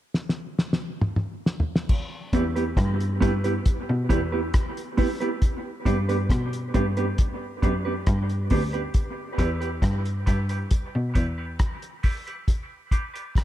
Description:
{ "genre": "dub reggae", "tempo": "68 BPM", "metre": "4/4", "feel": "straight", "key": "E minor", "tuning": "A4 = 440 Hz", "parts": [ { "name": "cloth-damped thuddy drum kit", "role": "drums", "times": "0.1-13.4 s", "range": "crash cymbal, hi-hat, kick drum, rim click, snare drum, toms", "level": "-23 LUFS", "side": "equal", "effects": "none" }, { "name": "mellow electric guitar", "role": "accompaniment", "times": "2.3-13.2 s", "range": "B3 to B4", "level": "-28 LUFS", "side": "right 3 dB", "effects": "spring reverb, high-pass filter, dub echo" }, { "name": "rich cello", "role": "bass", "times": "2.3-11.5 s", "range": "D2 to B2", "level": "-26 LUFS", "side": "equal", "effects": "none" } ], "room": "light reverb, small room ambience", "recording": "echo-heavy mix", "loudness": "-23 LUFS", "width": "side -13 dB against mid", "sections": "0.0-1.9 A section; 1.9-8.9 B section; 8.9-13.4 C section", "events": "drum fill 0.1-1.9; filter sweep on clean electric guitar 5.4-13.4", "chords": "0.0 N.C.; 1.9 Em; 5.4 G; 8.9 Em; 12.5 G" }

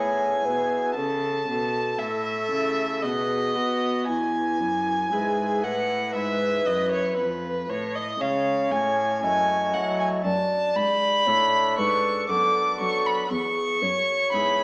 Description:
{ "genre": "classical, baroque-style sonata movement with continuo", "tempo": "58 BPM", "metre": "3/4", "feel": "straight", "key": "E major", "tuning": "A4 = 440 Hz", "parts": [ { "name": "mellow hollow tenor recorder", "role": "melody", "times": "0.0-14.6 s", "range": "E4 to D#5", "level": "-26 LUFS", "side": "equal", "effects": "none" }, { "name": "rich violin", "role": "second line", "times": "0.0-14.6 s", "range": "B4 to D6", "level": "-24 LUFS", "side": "equal", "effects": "none" }, { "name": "pipe organ, cornet", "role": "accompaniment", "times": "0.0-14.6 s", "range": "E2 to C#5", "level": "-31 LUFS", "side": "equal", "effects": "none" }, { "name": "rich cello", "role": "bass", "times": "0.0-14.6 s", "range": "E2 to B3", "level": "-32 LUFS", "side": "equal", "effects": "none" } ], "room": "wet recital hall reverb, RT60 1.3 s", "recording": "small speaker sound", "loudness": "-21 LUFS", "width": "side -32 dB against mid", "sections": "0.0-14.6 A section", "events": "none", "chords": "0.0 E; 1.0 A; 3.0 B; 4.1 E; 7.2 C#/E#; 9.2 F#m7; 10.2 D/F#; 12.3 Bm7/F#; 13.3 E" }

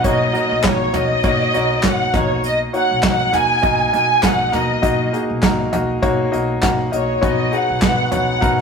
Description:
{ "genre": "piano-driven pop", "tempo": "100 BPM", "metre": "4/4", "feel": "swing 56% on 16ths", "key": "B major", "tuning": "A4 = 440 Hz", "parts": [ { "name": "clear concert grand piano", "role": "accompaniment", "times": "0.0-8.6 s", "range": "B2 to F#5", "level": "-20 LUFS", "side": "left 1 dB", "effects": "none" }, { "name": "upright bass", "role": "bass", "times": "0.0-8.6 s", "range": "B1", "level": "-25 LUFS", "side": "left 2 dB", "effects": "none" }, { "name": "soft brush drum kit", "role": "drums", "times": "0.0-8.6 s", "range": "handclaps, hi-hat, kick drum, snare drum, toms", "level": "-20 LUFS", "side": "right 1 dB", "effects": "none" }, { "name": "downlifter", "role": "sound effects", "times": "0.0-2.4 s", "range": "none", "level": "barely audible", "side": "none", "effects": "none" }, { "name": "warm studio violin section", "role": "melody", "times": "0.1-8.6 s", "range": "C#5 to G#5", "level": "-18 LUFS", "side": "right 1 dB", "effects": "none" } ], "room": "wet stone room reverb, RT60 1.1 s", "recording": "rough rehearsal-room recording, tube saturation", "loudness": "-15 LUFS", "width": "side -6 dB against mid", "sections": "0.0-8.6 A section", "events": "none", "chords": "0.0 F#6/B; 2.1 Badd9" }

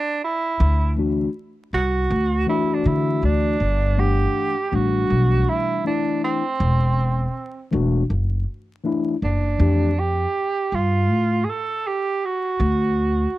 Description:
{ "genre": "hip hop", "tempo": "80 BPM", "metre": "4/4", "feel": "swing 65% on 16ths", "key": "unclear", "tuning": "A4 = 440 Hz", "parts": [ { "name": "breathy tenor saxophone", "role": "melody", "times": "0.0-13.4 s", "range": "C4 to A4", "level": "-23 LUFS", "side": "right 4 dB", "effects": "cassette tape, plate reverb" }, { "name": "upright bass", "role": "bass", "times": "0.6-13.2 s", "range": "E1 to D3", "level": "-20 LUFS", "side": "equal", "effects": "none" }, { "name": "mellow tine electric piano", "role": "accompaniment", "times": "1.0-9.9 s", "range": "E3 to F#5", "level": "-23 LUFS", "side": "left 4 dB", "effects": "cassette tape, plate reverb" } ], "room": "moderate booth ambience, RT60 0.2 s", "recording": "home recording on cassette, vinyl crackle", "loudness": "-19 LUFS", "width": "side -16 dB against mid", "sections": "0.0-3.6 A section; 3.6-13.4 B section", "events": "tenor saxophone solo 0.0-3.6", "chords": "0.0 N.C.; 0.6 Dadd9; 3.6 Gmaj7sus2; 6.6 D9/E; 9.6 Fmaj9; 12.6 D" }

